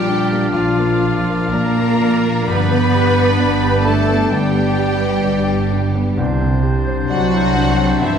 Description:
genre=cinematic, emotional film score for orchestra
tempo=65 BPM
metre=4/4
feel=rubato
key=unclear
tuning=A4 = 439 Hz
part: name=warm symphonic violin section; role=melody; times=0.0-8.2 s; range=E5 to B5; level=-25 LUFS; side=left 2 dB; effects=none
part: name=bright clarinet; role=second line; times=0.0-8.2 s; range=D4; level=-26 LUFS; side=left 2 dB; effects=none
part: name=clear oboe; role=second line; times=0.0-8.2 s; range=C5 to D5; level=-29 LUFS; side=equal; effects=none
part: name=concert flute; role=second line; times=0.0-8.2 s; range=F6 to G6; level=-29 LUFS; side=left 1 dB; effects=none
part: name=rich studio violin section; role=second line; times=0.0-8.2 s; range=E4 to B4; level=-25 LUFS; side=left 2 dB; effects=none
part: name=felt-muted upright piano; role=accompaniment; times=0.0-8.2 s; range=C2 to D5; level=-21 LUFS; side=left 1 dB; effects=none
part: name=rich studio viola section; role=accompaniment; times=0.0-8.2 s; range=E4 to B4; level=-27 LUFS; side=right 2 dB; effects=none
part: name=mellow French horn section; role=sustained chords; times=0.0-8.2 s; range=E3 to B3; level=-22 LUFS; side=left 1 dB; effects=none
part: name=concert harp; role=arpeggios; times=0.0-8.2 s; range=G2 to G5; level=-24 LUFS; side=left 4 dB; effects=none
part: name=rich symphonic cello section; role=bass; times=0.0-8.2 s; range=E3 to B3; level=-22 LUFS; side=right 3 dB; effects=none
part: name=rich symphonic double bass section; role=bass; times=0.0-8.2 s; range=G1 to C2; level=-21 LUFS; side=right 3 dB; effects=none
room=wet scoring stage reverb, RT60 1.5 s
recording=heard from further back in the room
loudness=-14 LUFS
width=side -7 dB against mid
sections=0.0-8.2 A section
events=none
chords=0.0 Bb; 2.5 G; 6.2 Cadd9

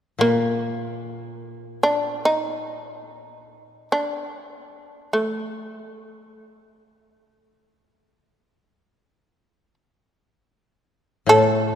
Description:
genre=japanese traditional, Japanese chamber music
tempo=free time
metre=none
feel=none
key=unclear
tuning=A4 = 440 Hz
part: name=shamisen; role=melody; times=0.2-11.8 s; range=A3 to A4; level=-20 LUFS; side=equal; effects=none
part: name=koto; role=accompaniment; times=0.2-11.8 s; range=A2 to Bb2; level=-24 LUFS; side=left 2 dB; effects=none
room=wet church reverb, RT60 3.4 s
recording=none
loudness=-20 LUFS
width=side -10 dB against mid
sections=0.0-11.8 A section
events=none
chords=none

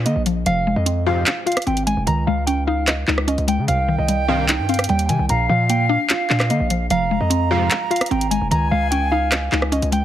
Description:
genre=hip hop, trap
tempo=149 BPM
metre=4/4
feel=half-time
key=unclear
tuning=A4 = 440 Hz
part: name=mallet-like synth pluck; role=accompaniment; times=0.0-10.0 s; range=Bb2 to F5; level=-22 LUFS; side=left 2 dB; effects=chorus, low-pass filter
part: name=hard-hitting 808-style bass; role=bass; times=0.0-10.0 s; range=F1 to D3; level=-22 LUFS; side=equal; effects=none
part: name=mellow electric guitar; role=melody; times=0.1-10.0 s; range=Eb5 to Bb5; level=-24 LUFS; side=equal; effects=low-pass filter
part: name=trap drum kit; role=drums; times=0.1-10.0 s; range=handclaps, hi-hat, rim click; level=-22 LUFS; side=equal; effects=none
part: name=sync-sweep polysynth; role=stabs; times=1.1-1.2, 4.3-4.5, 7.5-7.7 s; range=G2 to F3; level=-26 LUFS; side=right 1 dB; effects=chorus, phaser, tape echo
part: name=silver concert flute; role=second line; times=3.7-9.7 s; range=F5 to Bb5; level=-25 LUFS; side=right 3 dB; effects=tape echo
room=light reverb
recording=heavily compressed radio sound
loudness=-16 LUFS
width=side -11 dB against mid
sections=0.0-10.0 A section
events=none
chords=0.5 Fm; 2.1 Dbsus2; 3.7 Cm; 5.3 Bb; 6.9 Fm; 8.5 Dbsus2

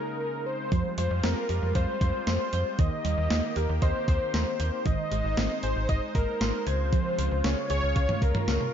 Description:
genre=synth-pop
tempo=116 BPM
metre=4/4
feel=straight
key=F minor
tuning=A4 = 442 Hz
part: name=wide unison lead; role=melody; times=0.0-8.7 s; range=Bb4 to Eb5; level=-30 LUFS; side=left 1 dB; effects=slapback echo, analog delay
part: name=brassy analog pad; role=sustained chords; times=0.0-8.7 s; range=Db3 to C5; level=-37 LUFS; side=left 3 dB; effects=chorus
part: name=soft round pluck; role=arpeggios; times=0.7-8.6 s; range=Eb3 to Ab6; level=-36 LUFS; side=right 11 dB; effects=chorus, slapback echo
part: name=slap-like FM bass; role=bass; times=0.7-8.6 s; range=Ab1 to F2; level=-28 LUFS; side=equal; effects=none
part: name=clean 12-bit digital drum machine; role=drums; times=0.7-8.7 s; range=hi-hat, kick drum, snare drum, toms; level=-28 LUFS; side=equal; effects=overdrive
room=light reverb, digital ambience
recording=nothing above 7.5 kHz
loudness=-25 LUFS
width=side -9 dB against mid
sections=0.7-8.7 A section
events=break 0.0-0.7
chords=0.0 Dbsus2; 0.7 Fmadd9; 2.8 Eb; 4.9 Ab; 6.7 Db

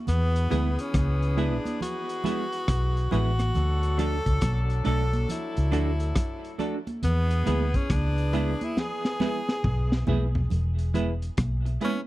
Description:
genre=roots reggae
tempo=69 BPM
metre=4/4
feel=swing 64% on 16ths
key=unclear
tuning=A4 = 440 Hz
part: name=breathy tenor saxophone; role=melody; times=0.1-12.0 s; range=B3 to A4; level=-32 LUFS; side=equal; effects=tape echo
part: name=mellow horn section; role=second line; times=0.1-10.0 s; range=E3 to A4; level=-37 LUFS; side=left 4 dB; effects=tape echo
part: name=vintage muted fingered electric bass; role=bass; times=0.1-11.8 s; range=E1 to E2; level=-24 LUFS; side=equal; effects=none
part: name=crunchy breakbeat drum kit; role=drums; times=0.1-12.1 s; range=hi-hat, kick drum, rim click, snare drum, toms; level=-28 LUFS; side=equal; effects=none
part: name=congas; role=percussion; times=0.1-12.1 s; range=none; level=-36 LUFS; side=right 3 dB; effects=none
part: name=semi-hollow electric guitar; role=accompaniment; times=0.5-12.0 s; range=G#3 to A4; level=-33 LUFS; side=right 6 dB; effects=tremolo, tape echo
part: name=barky reed electric piano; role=stabs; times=0.5-12.0 s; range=D4 to B4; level=-35 LUFS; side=left 5 dB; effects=overdrive, medium tremolo
room=studio reverb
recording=dry, close 1970s-style studio recording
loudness=-24 LUFS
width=side -16 dB against mid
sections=0.0-10.5 A section; 10.5-12.1 B section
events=drum fill 8.8-10.5; tenor saxophone solo 10.5-12.1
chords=0.1 E; 3.5 D; 7.0 E

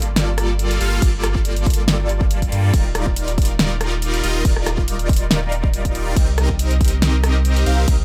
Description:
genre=future bass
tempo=140 BPM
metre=4/4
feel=swing 54% on 16ths, half-time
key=unclear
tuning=A4 = 441 Hz
part: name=big bright polysynth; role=riff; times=0.0-8.0 s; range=G3 to F5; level=-26 LUFS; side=equal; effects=chorus, phaser, sidechain pumping
part: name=saturated sub bass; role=bass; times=0.0-8.0 s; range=Eb1 to G2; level=-22 LUFS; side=equal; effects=sidechain pumping
part: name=pop drum kit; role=drums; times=0.0-8.0 s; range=crash cymbal, hi-hat, rim click, snare drum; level=-25 LUFS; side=equal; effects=none
part: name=electronic kick drum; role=drums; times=1.0-8.0 s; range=none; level=-21 LUFS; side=equal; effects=none
room=digital ambience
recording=none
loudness=-18 LUFS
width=mono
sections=0.0-8.0 A section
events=none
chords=0.0 Gm9; 2.7 Ebmaj9; 6.2 Cm7

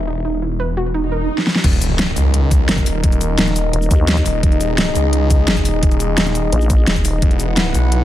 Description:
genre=dark technical drum and bass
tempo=172 BPM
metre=4/4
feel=straight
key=Eb phrygian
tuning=A4 = 437 Hz
part: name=dark analog pad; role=sustained chords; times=0.0-8.0 s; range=Eb4 to Gb5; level=-23 LUFS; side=left 2 dB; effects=chorus, sidechain pumping
part: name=snarling distorted saw bass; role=bass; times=0.0-8.0 s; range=Eb1 to Db2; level=-18 LUFS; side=equal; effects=distortion, overdrive
part: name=soft round pluck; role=arpeggios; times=0.1-1.2 s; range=Eb4 to B4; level=-24 LUFS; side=right 2 dB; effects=chorus, sidechain pumping, ping-pong delay
part: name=swell and impact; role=sound effects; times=1.1-3.0 s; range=none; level=-24 LUFS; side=right 1 dB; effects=none
part: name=dubstep drum kit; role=drums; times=1.4-8.0 s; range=cabasa, crash cymbal, hi-hat, snare drum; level=-18 LUFS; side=equal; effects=overdrive
part: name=electronic kick drum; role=drums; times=1.6-7.3 s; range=none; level=-15 LUFS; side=equal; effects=overdrive
part: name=vowel-sweep wobble bass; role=bass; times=3.7-4.2, 6.5-7.2 s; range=Eb1 to Eb2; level=-16 LUFS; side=equal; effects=chorus
room=little or no reverb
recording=none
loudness=-14 LUFS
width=side -13 dB against mid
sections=0.0-1.6 A section; 1.6-8.0 B section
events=filter sweep on synth pluck 0.0-1.6; swell 1.1-1.6; drum fill 1.4; drop 1.6-8.0; impact 1.6-3.0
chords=0.0 E5; 1.6 Eb5; 7.2 E5

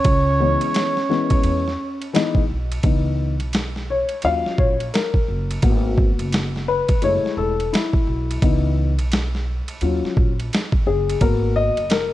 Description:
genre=hip hop, jazz-hop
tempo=86 BPM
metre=4/4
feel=swing 60% on 16ths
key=C# dorian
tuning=A4 = 438 Hz
part: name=mellow cor anglais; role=melody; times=0.0-2.1 s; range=C#5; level=-22 LUFS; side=right 1 dB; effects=slapback echo
part: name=breathy trombone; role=second line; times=0.0-2.1 s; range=C#4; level=-26 LUFS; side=right 3 dB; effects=slapback echo
part: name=boom bap sampler-style drum kit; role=drums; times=0.0-12.1 s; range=hi-hat, kick drum, ride cymbal, snare drum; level=-20 LUFS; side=right 1 dB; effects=overdrive
part: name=upright bass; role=bass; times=0.1-12.1 s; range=E1 to E2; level=-23 LUFS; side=right 1 dB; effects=none
part: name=dark baby grand piano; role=accompaniment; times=0.4-12.1 s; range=E3 to E#5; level=-22 LUFS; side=left 5 dB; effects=none
room=small room ambience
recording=dark, warm production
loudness=-18 LUFS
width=side -15 dB against mid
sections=0.0-2.8 A section; 2.8-12.1 B section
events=grand piano solo 2.8-12.1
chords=0.0 C#m7; 2.8 C#m9; 4.2 D#m9; 5.6 G#m9; 7.0 F#m9; 8.4 C#m9; 9.8 D#m9; 11.2 G#m9

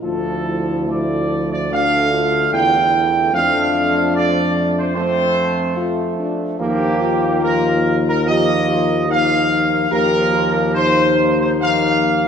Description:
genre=classical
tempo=73 BPM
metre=4/4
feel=straight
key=unclear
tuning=A4 = 439 Hz
part: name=dark trumpet section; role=melody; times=0.0-12.3 s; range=G4 to G5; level=-18 LUFS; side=right 2 dB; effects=none
part: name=dark French horn section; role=sustained chords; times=0.0-12.3 s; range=C4 to G4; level=-21 LUFS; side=left 5 dB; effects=none
part: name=mellow trombone section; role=sustained chords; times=0.0-12.3 s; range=D3 to Bb3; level=-23 LUFS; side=right 2 dB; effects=none
part: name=warm tuba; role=bass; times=0.0-12.3 s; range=D2 to F2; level=-22 LUFS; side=right 2 dB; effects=none
room=wet concert hall reverb, RT60 2.1 s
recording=none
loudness=-14 LUFS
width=side -7 dB against mid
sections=0.0-12.3 A section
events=none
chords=0.0 Dm; 3.3 F; 6.6 Ebsus2

